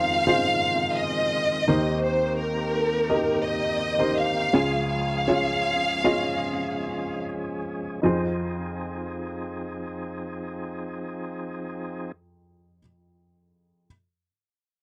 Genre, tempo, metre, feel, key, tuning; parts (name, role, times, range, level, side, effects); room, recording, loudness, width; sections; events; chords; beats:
pop; 72-85 BPM; 4/4; straight; F minor; A4 = 440 Hz
warm studio violin section; melody; 0.0-7.2 s; Bb4 to F5; -27 LUFS; equal
warm upright piano; accompaniment; 0.0-13.9 s; F1 to Eb5; -29 LUFS; equal
percussive tonewheel organ; sustained chords; 0.0-12.1 s; Eb3 to Ab4; -35 LUFS; equal; overdrive, fast rotary speaker
light reverb; -26 LUFS; mono
0.0-8.0 A section; 8.0-11.4 B section
slowing down 2.0-8.0
0.0 Fm7; 1.7 Cm7/Eb; 4.5 Db; 8.0 Fm7
0.61 1.32 | 2.02 2.73 3.45 4.17 | 4.91 5.66 6.43 7.22 | 8.04 8.87 9.70 10.53